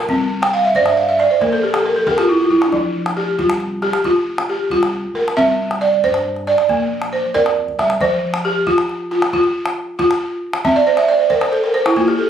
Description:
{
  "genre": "west african traditional, West African string and xylophone music",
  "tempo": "91 BPM (dotted quarters)",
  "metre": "12/8",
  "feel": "straight",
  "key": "F major",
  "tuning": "A4 = 440 Hz",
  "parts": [
    { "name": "balafon", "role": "arpeggios", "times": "0.0-12.3 s", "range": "F3 to G5", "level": "-15 LUFS", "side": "right 1 dB", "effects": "none" },
    { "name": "punchy sub bass", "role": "bass", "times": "0.0-8.0 s", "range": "F1 to G2", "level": "-30 LUFS", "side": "equal", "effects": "none" },
    { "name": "calabash", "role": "percussion", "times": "0.1-12.1 s", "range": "none", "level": "-24 LUFS", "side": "left 1 dB", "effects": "none" }
  ],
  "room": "moderate small room reverb, RT60 0.5 s",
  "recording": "recorded on a phone in the room, studio reverb",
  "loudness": "-14 LUFS",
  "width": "side -9 dB against mid",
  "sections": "0.0-8.0 A section; 8.0-12.3 B section",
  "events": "balafon fill 0.4-2.7, 10.6-12.3; drum fill 7.6-8.0",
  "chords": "0.1 C5; 1.4 Bb5; 2.7 F5; 5.4 C; 6.7 Bb; 8.0 F5; 10.6 N.C."
}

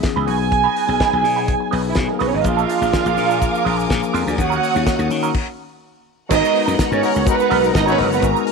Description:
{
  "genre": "disco",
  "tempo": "124 BPM",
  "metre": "4/4",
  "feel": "straight",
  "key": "G# minor",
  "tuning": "A4 = 441 Hz",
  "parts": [
    { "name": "mellow tine electric piano", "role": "accompaniment", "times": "0.0-8.5 s", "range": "D#3 to B4", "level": "-22 LUFS", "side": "left 15 dB", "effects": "medium stereo tremolo" },
    { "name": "semi-hollow electric guitar", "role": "accompaniment", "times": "0.0-8.5 s", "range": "F#3 to B4", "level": "-26 LUFS", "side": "right 13 dB", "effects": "wah, lush chorus" },
    { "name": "damped 70s drum kit", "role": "drums", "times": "0.0-8.5 s", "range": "crash cymbal, hi-hat, kick drum, snare drum", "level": "-23 LUFS", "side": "left 1 dB", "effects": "none" },
    { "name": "slap bass", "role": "bass", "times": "0.2-8.3 s", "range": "F#1 to D#3", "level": "-23 LUFS", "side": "left 1 dB", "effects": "none" },
    { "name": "dark studio violin section", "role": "second line", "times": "0.3-8.2 s", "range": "G#3 to G#5", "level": "-19 LUFS", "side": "right 9 dB", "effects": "none" },
    { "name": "bright studio string section", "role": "sustained chords", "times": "2.4-8.5 s", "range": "A#4 to D#6", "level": "-27 LUFS", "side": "left 2 dB", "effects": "none" },
    { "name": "egg shaker", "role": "percussion", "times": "2.5-8.5 s", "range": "none", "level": "-39 LUFS", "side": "right 14 dB", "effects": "none" },
    { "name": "clear horn section", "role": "stabs", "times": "7.0-8.0 s", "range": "D#4 to B4", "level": "-24 LUFS", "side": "left 12 dB", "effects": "none" }
  ],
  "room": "moderate echo chamber reverb, RT60 1.5 s, small room ambience",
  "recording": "1960s-style stereo with parts hard left and right",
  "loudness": "-15 LUFS",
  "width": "side -4 dB against mid",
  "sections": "0.0-6.3 A section; 6.3-8.5 B section",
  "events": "stop 5.3-6.3",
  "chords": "0.3 G#m7/B; 2.5 A#7; 4.4 D#m7; 6.3 G#m9"
}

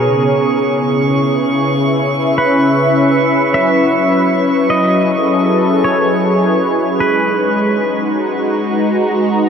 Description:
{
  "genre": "ambient",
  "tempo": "52 BPM",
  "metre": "3/4",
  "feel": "straight",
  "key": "unclear",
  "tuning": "A4 = 440 Hz",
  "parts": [
    { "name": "pedal steel guitar", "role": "melody", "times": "0.0-9.3 s", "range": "G#4 to E5", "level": "-18 LUFS", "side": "equal", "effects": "tape echo" },
    { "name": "warm analog pad", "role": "sustained chords", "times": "0.0-9.5 s", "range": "C#3 to A#5", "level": "-13 LUFS", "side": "equal", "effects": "chorus" },
    { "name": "drifting glass-harmonics texture", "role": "texture", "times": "0.0-9.5 s", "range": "C#6", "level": "-24 LUFS", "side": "right 4 dB", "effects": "chorus, built-in reverb" }
  ],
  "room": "wet huge ambient reverb, RT60 8.0 s",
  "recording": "none",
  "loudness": "-11 LUFS",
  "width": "side -7 dB against mid",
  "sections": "0.0-9.5 A section",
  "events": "filter sweep on analog synth pad 0.0-9.5",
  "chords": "0.1 C#m7; 3.5 F#m11; 7.0 G#m9"
}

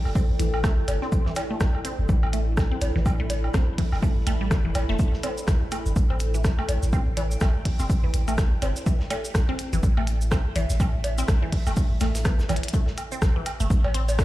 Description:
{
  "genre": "minimal techno",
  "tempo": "124 BPM",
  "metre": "4/4",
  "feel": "swing 58% on 16ths",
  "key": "unclear",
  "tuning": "A4 = 441 Hz",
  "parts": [
    { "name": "granular cloud pad", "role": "texture", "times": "0.0-12.8 s", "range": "E4 to B5", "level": "-36 LUFS", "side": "equal", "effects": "built-in reverb, sidechain pumping" },
    { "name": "punchy sub bass", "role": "bass", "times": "0.1-14.2 s", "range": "E1 to A1", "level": "-25 LUFS", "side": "equal", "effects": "sidechain pumping" },
    { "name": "modern studio drum kit", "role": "drums", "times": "0.1-14.2 s", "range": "hi-hat, shaker, snare drum", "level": "-42 LUFS", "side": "right 1 dB", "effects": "high-pass filter on hats, high-pass filter on snare, high-pass filter on perc, high-pass filter on room" },
    { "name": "woodblock and cowbell", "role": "percussion", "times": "0.1-14.2 s", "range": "none", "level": "-33 LUFS", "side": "equal", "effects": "ping-pong delay" },
    { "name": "resonant blip pluck", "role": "riff", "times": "0.2-14.2 s", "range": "E3 to C4", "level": "-32 LUFS", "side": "equal", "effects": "phaser, sidechain pumping, dub echo" },
    { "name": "electronic kick drum", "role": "drums", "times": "0.2-14.2 s", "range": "none", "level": "-23 LUFS", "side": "equal", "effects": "overdrive" },
    { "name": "minimal click drum kit", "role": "drums", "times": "0.4-14.2 s", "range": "hi-hat, rim click, shaker", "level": "-34 LUFS", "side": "left 1 dB", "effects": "none" }
  ],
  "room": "studio ambience",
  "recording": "played on a big sound system in a bare room, large studio reverb",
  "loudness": "-21 LUFS",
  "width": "side -16 dB against mid",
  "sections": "0.0-12.7 A section; 12.7-14.2 B section",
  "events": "drum fill 12.5; drop 12.7-14.2",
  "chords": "0.0 A7(no3); 12.7 Am"
}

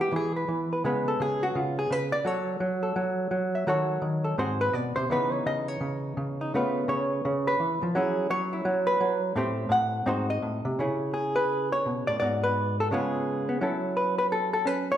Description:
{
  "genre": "solo jazz",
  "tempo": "170 BPM",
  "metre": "4/4",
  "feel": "swing 63% on 8ths, rubato",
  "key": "C# minor from 10.8 s",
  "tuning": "A4 = 440 Hz",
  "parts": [
    { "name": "hollow-body jazz guitar", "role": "solo", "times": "0.0-15.0 s", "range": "G#2 to F#5", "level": "-25 LUFS", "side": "equal", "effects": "none" }
  ],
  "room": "wet recital hall reverb, RT60 1.4 s",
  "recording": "recorded in a church or concert hall",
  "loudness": "-25 LUFS",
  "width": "side -10 dB against mid",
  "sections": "0.0-10.8 A section; 10.8-15.0 B section",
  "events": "hollow-body jazz guitar solo 0.0-10.8",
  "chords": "0.0 E; 0.8 C#5; 2.2 F#m; 3.7 D#m7b5; 4.4 G#7#9; 5.1 C#m9; 6.5 C#7alt; 7.9 F#9sus4; 9.3 Am7; 10.0 G#7; 10.8 C#m7; 12.2 G#m7b5; 12.9 C#7; 13.6 F#m7"
}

